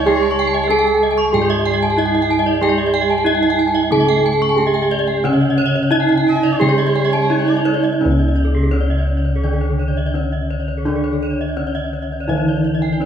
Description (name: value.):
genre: Balinese gamelan.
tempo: 84-94 BPM.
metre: 4/4.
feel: straight.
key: C# pelog.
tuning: A4 = 440 Hz.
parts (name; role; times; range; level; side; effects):
gamelan-type bronze metallophone; melody; 0.0-13.1 s; C#4 to A4-40c; -19 LUFS; right 2 dB; tape echo.
bright reedy bass recorder; second line; 0.0-7.8 s; G#4-42c to D#5+42c; -26 LUFS; right 3 dB; none.
gamelan-type bronze metallophone; accompaniment; 0.0-13.1 s; C#3 to A3-40c; -25 LUFS; left 2 dB; none.
gamelan-type bronze metallophone; arpeggios; 0.0-13.1 s; A4-40c to C#6; -23 LUFS; left 3 dB; none.
gamelan-type bossed gongs; bass; 0.0-13.1 s; C#2 to G#4-45c; -20 LUFS; equal; none.
gamelan-type bronze metallophone; arpeggios; 0.2-12.9 s; G#4-45c to C#6; -24 LUFS; right 4 dB; none.
room: moderate scoring stage reverb, RT60 1.5 s.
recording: small room ambience.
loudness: -14 LUFS.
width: side -8 dB against mid.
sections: 0.0-8.0 A section; 8.0-13.1 B section.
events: none.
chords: none.